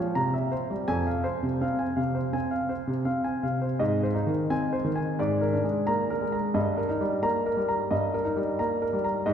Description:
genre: classical, baroque-style suite movement for grand piano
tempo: 79-90 BPM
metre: 4/4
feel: rubato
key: F minor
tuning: A4 = 438 Hz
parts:
  - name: warm concert grand piano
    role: solo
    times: 0.0-9.3 s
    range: F2 to Bb5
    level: -24 LUFS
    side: equal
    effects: none
room: wet cathedral reverb, RT60 5.1 s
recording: heard from further back in the room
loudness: -25 LUFS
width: side -8 dB against mid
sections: 0.0-3.8 A section; 3.8-9.3 A section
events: none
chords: 0.2 C7; 0.9 Fm; 3.8 Ab; 5.2 Bb7/Ab; 6.5 Eb/G

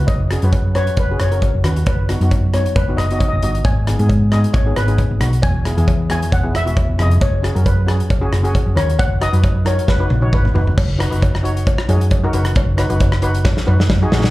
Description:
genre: calypso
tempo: 135 BPM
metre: 4/4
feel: swing 54% on 16ths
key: B major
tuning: A4 = 440 Hz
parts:
  - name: steel pan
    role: melody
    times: 0.0-10.5 s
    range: B4 to G#5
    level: -24 LUFS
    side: left 2 dB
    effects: plate reverb, slapback echo
  - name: steel pan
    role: accompaniment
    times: 0.0-14.3 s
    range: B3 to C#5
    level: -24 LUFS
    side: left 1 dB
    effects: plate reverb, slapback echo
  - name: hollow-body short-scale fingered electric bass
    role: bass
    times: 0.0-14.3 s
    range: E1 to G#2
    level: -16 LUFS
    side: equal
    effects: none
  - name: natural country drum kit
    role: drums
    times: 0.1-14.3 s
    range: crash cymbal, hi-hat, kick drum, rim click, snare drum, toms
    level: -18 LUFS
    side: equal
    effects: none
  - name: cowbell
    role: percussion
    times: 0.1-14.0 s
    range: none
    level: -29 LUFS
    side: right 1 dB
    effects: slapback echo
room: little or no reverb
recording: live gig heard through the venue's PA, club reverb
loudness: -14 LUFS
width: side -18 dB against mid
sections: 0.0-10.8 A section; 10.8-14.3 B section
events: steel pan solo 0.0-10.8; drum fill 9.9-10.8, 13.4-14.3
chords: 0.1 F#5; 1.9 B/F#; 3.7 G#m; 5.4 E; 7.2 F#sus2; 9.0 B/F#

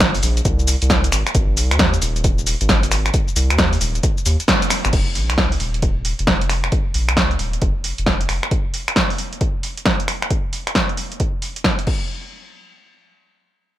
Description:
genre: UK garage, two-step garage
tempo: 134 BPM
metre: 4/4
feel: swing 64% on 16ths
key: F minor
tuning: A4 = 440 Hz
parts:
  - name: soft dub sub bass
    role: bass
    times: 0.0-8.4 s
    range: Eb1 to Eb2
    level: -20 LUFS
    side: equal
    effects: sidechain pumping
  - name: electronic kick drum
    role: drums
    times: 0.0-12.0 s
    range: none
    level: -21 LUFS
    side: equal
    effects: none
  - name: punchy analog drum machine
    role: drums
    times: 0.0-12.0 s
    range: cabasa, crash cymbal, finger snaps, hi-hat, snare drum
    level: -19 LUFS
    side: equal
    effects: none
room: little or no reverb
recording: none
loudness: -16 LUFS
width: side -13 dB against mid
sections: 0.0-4.9 A section; 4.9-12.1 B section; 12.1-13.8 C section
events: drop 0.0-4.9; band accent 4.5; filter sweep on sub bass 4.9-8.5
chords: none

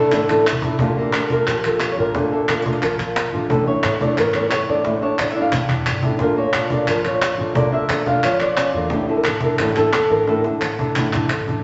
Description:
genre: flamenco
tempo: 177 BPM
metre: 4/4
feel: straight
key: A phrygian dominant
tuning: A4 = 440 Hz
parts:
  - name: flamenco guitar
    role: melody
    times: 0.0-11.6 s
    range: A2 to F5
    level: -22 LUFS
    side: equal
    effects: none
  - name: flamenco guitar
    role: stabs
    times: 0.0-11.6 s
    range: D3 to F4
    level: -27 LUFS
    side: equal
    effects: none
  - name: upright bass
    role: bass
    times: 0.1-11.6 s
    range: E1 to Bb2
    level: -31 LUFS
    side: equal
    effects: none
  - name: cajon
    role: percussion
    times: 0.1-11.6 s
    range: none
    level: -28 LUFS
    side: equal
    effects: none
  - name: palmas hand claps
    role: percussion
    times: 0.1-11.5 s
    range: none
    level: -27 LUFS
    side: equal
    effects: none
room: wet large studio reverb, RT60 1.4 s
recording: nothing above 7.9 kHz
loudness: -19 LUFS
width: mono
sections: 0.8-11.6 A section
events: drum fill 0.3-0.8, 4.8-6.2, 10.3-11.6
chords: 0.0 Asus4; 0.8 Bbmaj7; 3.5 Asus4; 6.2 Bbmaj7; 8.9 Asus4

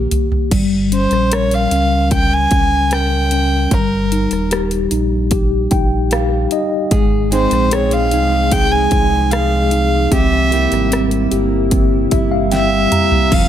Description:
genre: pop ballad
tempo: 75 BPM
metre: 4/4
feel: straight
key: unclear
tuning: A4 = 438 Hz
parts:
  - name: tine electric piano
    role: accompaniment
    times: 0.0-13.5 s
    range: Eb3 to Bb5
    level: -18 LUFS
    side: left 2 dB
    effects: medium stereo tremolo
  - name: sub bass with octave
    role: bass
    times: 0.0-13.5 s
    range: Eb1 to Db2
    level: -19 LUFS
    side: equal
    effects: none
  - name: pop drum kit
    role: drums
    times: 0.1-13.5 s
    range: crash cymbal, hi-hat, kick drum, ride cymbal, rim click, snare drum, toms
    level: -18 LUFS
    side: equal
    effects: none
  - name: warm violin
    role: melody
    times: 0.9-13.5 s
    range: Bb4 to Ab5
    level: -17 LUFS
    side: right 1 dB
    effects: none
  - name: glassy FM pad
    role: sustained chords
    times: 7.5-13.5 s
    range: C3 to F4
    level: -22 LUFS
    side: equal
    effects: ensemble chorus, built-in reverb
  - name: fingerpicked plugged-in steel-string acoustic guitar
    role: arpeggios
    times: 6.9-13.5 s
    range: F2 to Ab4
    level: -23 LUFS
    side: right 4 dB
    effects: none
room: light reverb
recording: none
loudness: -13 LUFS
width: side -10 dB against mid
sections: 0.5-13.3 A section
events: drum fill 0.0-0.5, 12.5-13.3; tine electric piano fill 5.3-6.9, 11.7-13.3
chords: 0.0 Eb; 0.5 Gdim; 3.7 Eb; 6.9 Fm7/Ab; 10.1 C7

